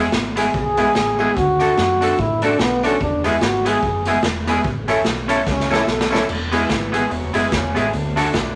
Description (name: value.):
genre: ska.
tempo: 146 BPM.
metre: 4/4.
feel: swing 58% on 8ths.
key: E mixolydian.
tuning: A4 = 440 Hz.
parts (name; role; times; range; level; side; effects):
electric guitar at the edge of break-up; accompaniment; 0.0-8.4 s; B3 to A4; -24 LUFS; equal; tape echo.
warm upright piano; stabs; 0.0-8.3 s; G#3 to A4; -26 LUFS; equal; none.
deep dub fingered electric bass; bass; 0.0-8.6 s; E1 to A2; -29 LUFS; equal; none.
raw garage drum kit; drums; 0.1-8.5 s; crash cymbal, hi-hat, kick drum, snare drum; -25 LUFS; equal; none.
tambourine; percussion; 0.4-8.3 s; none; -46 LUFS; equal; none.
breathy trombone; melody; 0.6-6.1 s; B3 to A4; -22 LUFS; equal; none.
dark horn section; melody; 6.5-8.6 s; C#3 to F#4; -30 LUFS; equal; none.
room: wet club ambience, RT60 0.5 s.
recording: none.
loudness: -19 LUFS.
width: mono.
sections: 0.0-6.3 A section; 6.3-8.6 B section.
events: trombone solo 0.0-6.3; drum fill 5.5-6.3.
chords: 0.0 E; 1.4 D; 3.0 E; 4.6 A; 6.3 E; 7.9 D.